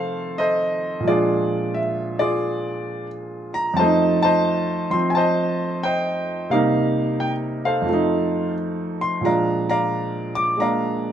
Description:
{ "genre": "solo jazz", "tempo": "88 BPM", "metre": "4/4", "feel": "swing 66% on 8ths", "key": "F major", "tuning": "A4 = 441 Hz", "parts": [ { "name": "clear baby grand piano", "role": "solo", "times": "0.0-11.1 s", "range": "F2 to D6", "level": "-19 LUFS", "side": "equal", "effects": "none" } ], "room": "moderate club reverb, RT60 0.9 s", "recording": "none", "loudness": "-19 LUFS", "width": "side -9 dB against mid", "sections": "0.0-11.1 A section", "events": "none", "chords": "0.0 F7; 1.1 Bb7; 3.8 F7; 6.5 Cm7; 7.9 F7; 9.2 Bb7", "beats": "0.37 | 1.05 1.74 2.42 3.10 | 3.78 4.47 5.15 5.83 | 6.51 7.19 7.87 8.55 | 9.24 9.92 10.60" }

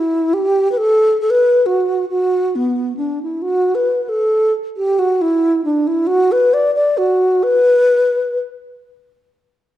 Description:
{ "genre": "mexican folk", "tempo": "135 BPM", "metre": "3/4", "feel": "straight", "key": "B minor", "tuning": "A4 = 440 Hz", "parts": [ { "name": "mellow wooden-headed alto flute", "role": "solo", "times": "0.0-8.4 s", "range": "B3 to D5", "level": "-13 LUFS", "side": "equal", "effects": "none" } ], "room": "moderate recital hall reverb, RT60 1.3 s", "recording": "dark, warm production", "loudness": "-13 LUFS", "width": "side -13 dB against mid", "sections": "0.0-3.4 A section; 3.4-8.9 B section", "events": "slowing down 6.1-8.9", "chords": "none", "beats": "0.32 | 0.76 1.20 1.64 | 2.08 2.53 2.98 | 3.43 3.87 4.32 | 4.76 5.19 5.63 | 6.07 6.50 6.95 | 7.40 7.88 8.38" }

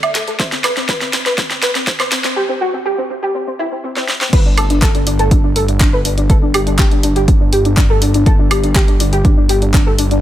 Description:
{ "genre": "progressive house", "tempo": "122 BPM", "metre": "4/4", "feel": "straight", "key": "G major", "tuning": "A4 = 440 Hz", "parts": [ { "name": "soft round pluck", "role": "arpeggios", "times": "0.0-10.2 s", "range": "C4 to E5", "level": "-18 LUFS", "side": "equal", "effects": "ensemble chorus, sidechain pumping, digital delay" }, { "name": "deep house drum kit", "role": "drums", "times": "0.0-10.2 s", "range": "crash cymbal, handclaps, hi-hat, snare drum, woodblock", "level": "-18 LUFS", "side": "equal", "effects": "high-pass filter on snare, high-pass filter on hats, high-pass filter on perc, high-pass filter on cymbals" }, { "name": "electronic kick drum", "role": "drums", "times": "0.4-9.8 s", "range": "none", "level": "-13 LUFS", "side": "equal", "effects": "none" }, { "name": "fat analog bass", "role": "bass", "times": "4.3-10.2 s", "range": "G1", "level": "-17 LUFS", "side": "equal", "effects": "tube saturation, sidechain pumping" } ], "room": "light reverb", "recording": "high-pass filter", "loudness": "-12 LUFS", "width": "side -12 dB against mid", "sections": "0.0-4.3 A section; 4.3-10.2 B section", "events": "build-up 0.0-4.3; drum fill 0.0-2.4, 4.0-4.3; break 2.4-4.3; drop 4.3-10.2", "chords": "0.4 N.C.; 4.3 G5", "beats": "| 0.40 0.89 1.38 1.87 | 2.36 2.85 3.35 3.84 | 4.33 4.82 5.31 5.80 | 6.30 6.79 7.28 7.77 | 8.26 8.76 9.25 9.74" }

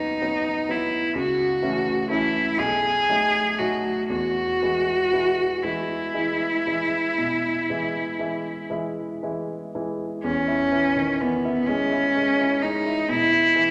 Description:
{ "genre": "classical, romantic duo for cello and grand piano", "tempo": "38-44 BPM (dotted quarters)", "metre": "12/8", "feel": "rubato", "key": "E major", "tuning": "A4 = 440 Hz", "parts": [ { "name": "rich cello", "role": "melody", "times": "0.0-13.7 s", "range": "B3 to G#4", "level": "-24 LUFS", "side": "equal", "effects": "none" }, { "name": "clear baby grand piano", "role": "accompaniment", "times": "0.0-13.7 s", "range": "B1 to E4", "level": "-31 LUFS", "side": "equal", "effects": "none" } ], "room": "wet scoring stage reverb, RT60 2.0 s", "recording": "none", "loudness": "-23 LUFS", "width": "mono", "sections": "0.0-10.2 A section; 10.2-13.7 B section", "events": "none", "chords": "0.0 B/D#; 1.2 A/C#; 2.6 B7; 4.1 E", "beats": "1.16 2.59 | 4.10 5.62 7.17 8.69 | 10.23 11.67 13.08" }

